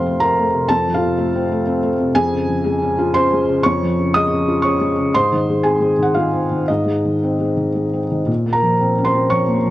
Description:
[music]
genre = neoclassical minimalist piano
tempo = 111-126 BPM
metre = 3/4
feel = rubato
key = Bb minor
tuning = A4 = 439 Hz
[part]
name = felt-muted upright piano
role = solo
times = 0.0-9.7 s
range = F2 to Eb6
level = -15 LUFS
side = equal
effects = none
[sound]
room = moderate studio reverb, RT60 0.6 s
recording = cassette tape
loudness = -15 LUFS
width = side -15 dB against mid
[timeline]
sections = 0.0-8.3 A section; 8.3-9.7 B section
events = none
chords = 0.0 F; 2.2 Db/F; 5.1 Ab; 8.3 Bbmadd9

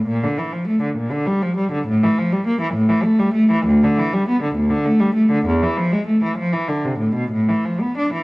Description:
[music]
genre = classical, baroque-style suite movement for unaccompanied cello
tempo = 62-68 BPM (dotted quarters)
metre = 12/8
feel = rubato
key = unclear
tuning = A4 = 440 Hz
[part]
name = rich cello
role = solo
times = 0.0-8.2 s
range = D2 to D4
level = -16 LUFS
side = equal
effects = none
[sound]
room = wet stone room reverb, RT60 1.3 s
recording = worn, warbling old tape, cassette tape, warbly pitch drift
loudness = -16 LUFS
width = side -23 dB against mid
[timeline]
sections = 0.0-8.2 A section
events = none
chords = none

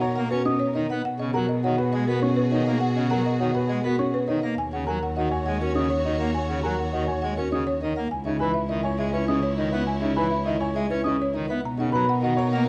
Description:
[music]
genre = classical, minimalist pattern music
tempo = 102 BPM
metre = 3/4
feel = straight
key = C# dorian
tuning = A4 = 440 Hz
[part]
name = folk marimba with medium mallets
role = melody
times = 0.0-12.7 s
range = A#4 to A#5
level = -33 LUFS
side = equal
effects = none
[part]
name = rich chamber violin section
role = sustained chords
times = 0.0-12.7 s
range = D#4 to C#5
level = -37 LUFS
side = equal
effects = none
[part]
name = celesta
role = arpeggios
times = 0.0-12.4 s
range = E5 to D#6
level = -33 LUFS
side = equal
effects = none
[part]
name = warm grand piano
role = arpeggios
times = 0.0-12.7 s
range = C#4 to C#5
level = -31 LUFS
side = equal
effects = none
[part]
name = rich cello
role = bass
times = 0.0-12.7 s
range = C#2 to B2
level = -29 LUFS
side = equal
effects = none
[part]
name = pipe organ, full organ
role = accompaniment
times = 0.2-12.6 s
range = C#3 to C#4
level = -33 LUFS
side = equal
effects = none
[sound]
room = moderate large studio reverb, RT60 1.1 s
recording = dark, warm production, nothing above 11.0 kHz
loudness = -25 LUFS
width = mono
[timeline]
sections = 0.0-12.7 A section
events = none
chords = 0.0 Bmaj7; 1.0 G#m9/B; 4.6 D#m7; 8.1 C#m7; 11.6 Bmaj7

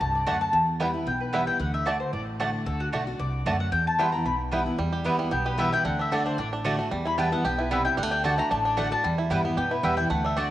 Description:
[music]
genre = bluegrass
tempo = 226 BPM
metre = 4/4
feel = straight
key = E minor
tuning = A4 = 440 Hz
[part]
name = mandolin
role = melody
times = 0.0-10.5 s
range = F#4 to C6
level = -27 LUFS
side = left 2 dB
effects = cassette tape
[part]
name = picked steel-string acoustic guitar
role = accompaniment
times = 0.0-10.5 s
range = E2 to F#4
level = -30 LUFS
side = equal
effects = none
[part]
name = upright bass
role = bass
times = 0.0-10.5 s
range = A1 to G2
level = -33 LUFS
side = equal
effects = none
[part]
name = bluegrass banjo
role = melody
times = 0.3-10.5 s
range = D3 to G4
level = -32 LUFS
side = right 3 dB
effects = cassette tape
[part]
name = mandolin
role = stabs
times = 0.3-10.5 s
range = A3 to A5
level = -31 LUFS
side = right 2 dB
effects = none
[sound]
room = moderate lush hall reverb, RT60 2.0 s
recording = home recording on cassette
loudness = -23 LUFS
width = side -13 dB against mid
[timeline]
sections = 0.0-4.8 A section; 4.8-10.5 A section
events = none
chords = 0.0 D; 0.5 Em; 1.6 D; 3.7 Em; 5.9 D; 6.9 Em; 8.0 D; 9.0 Em

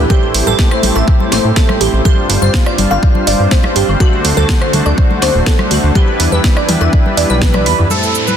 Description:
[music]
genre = progressive house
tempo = 123 BPM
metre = 4/4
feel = straight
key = unclear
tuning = A4 = 440 Hz
[part]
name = lush unison pad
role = sustained chords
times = 0.0-8.4 s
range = A2 to G4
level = -22 LUFS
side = right 1 dB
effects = chorus, sidechain pumping
[part]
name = soft supersaw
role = stabs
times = 0.0-8.4 s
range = G2 to C5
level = -18 LUFS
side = left 1 dB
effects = sidechain pumping, low-pass filter, tape echo
[part]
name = fat analog bass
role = bass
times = 0.0-7.9 s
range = D1 to A2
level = -14 LUFS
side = equal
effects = sidechain pumping
[part]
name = glassy wavetable pluck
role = arpeggios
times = 0.1-7.7 s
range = F#4 to B5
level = -18 LUFS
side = right 2 dB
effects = chorus, sidechain pumping, tape echo
[part]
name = electronic kick drum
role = drums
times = 0.1-7.5 s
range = none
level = -11 LUFS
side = equal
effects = none
[part]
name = congas, cowbell and woodblock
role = percussion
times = 0.1-8.4 s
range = none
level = -23 LUFS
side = left 4 dB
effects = sidechain pumping on perc
[part]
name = house drum kit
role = drums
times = 0.3-8.4 s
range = hi-hat, rim click, shaker, snare drum, toms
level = -19 LUFS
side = right 1 dB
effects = sidechain pumping on hats, sidechain pumping on toms, sidechain pumping on perc
[part]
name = plucky unison lead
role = melody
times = 7.9-8.4 s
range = A4 to B4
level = -18 LUFS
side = equal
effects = cassette tape, sidechain pumping, tape echo
[part]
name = downlifter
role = sound effects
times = 7.9-8.4 s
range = none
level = -16 LUFS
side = right 1 dB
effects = none
[sound]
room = light reverb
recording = dense, heavily limited modern master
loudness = -9 LUFS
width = side -9 dB against mid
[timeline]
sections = 0.0-7.9 A section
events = filter sweep on supersaw synth 0.0-7.9; drum fill 7.4-7.9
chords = 0.1 Am7; 2.1 G7sus4; 4.0 D7; 6.0 Em7

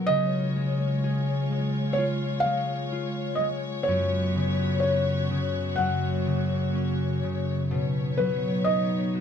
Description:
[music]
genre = children's music, lullaby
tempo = 63 BPM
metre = 4/4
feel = straight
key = B major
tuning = A4 = 440 Hz
[part]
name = felt-muted upright piano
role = melody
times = 0.0-9.2 s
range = B4 to F#5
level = -27 LUFS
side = right 1 dB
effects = none
[part]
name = concert harp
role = accompaniment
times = 0.0-9.2 s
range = F#2 to G#4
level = -26 LUFS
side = left 1 dB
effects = none
[part]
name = dark chamber string section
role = sustained chords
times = 0.0-9.2 s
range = G#3 to C#5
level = -32 LUFS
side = left 3 dB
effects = none
[sound]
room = light reverb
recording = dark, warm production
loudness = -24 LUFS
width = side -8 dB against mid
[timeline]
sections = 0.0-7.7 A section; 7.7-9.2 B section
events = none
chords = 0.1 C#; 3.9 F#sus4; 5.8 F#; 7.7 Badd9

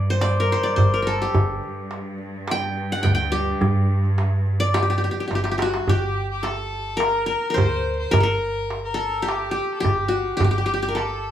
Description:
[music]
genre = Arabic maqam ensemble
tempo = 106 BPM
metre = 4/4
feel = straight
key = G maqam nahawand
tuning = A4 = 439 Hz
[part]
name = qanun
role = melody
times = 0.0-11.3 s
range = F#4 to G5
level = -23 LUFS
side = left 1 dB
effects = none
[part]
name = metallic FM bass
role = bass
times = 0.0-11.3 s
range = G1 to G2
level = -24 LUFS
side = equal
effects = none
[part]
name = clear chamber cello section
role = drone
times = 0.0-5.9 s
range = G2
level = -31 LUFS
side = equal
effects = none
[part]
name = darbuka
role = percussion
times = 0.2-11.1 s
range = none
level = -23 LUFS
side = right 2 dB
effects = none
[part]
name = clear violin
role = second line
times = 5.6-11.3 s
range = F#4 to C5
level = -29 LUFS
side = left 4 dB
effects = none
[sound]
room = light reverb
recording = studio ambience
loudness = -19 LUFS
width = side -10 dB against mid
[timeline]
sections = 0.0-5.9 A section; 5.9-11.3 B section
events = drum fill 5.3-5.9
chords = none

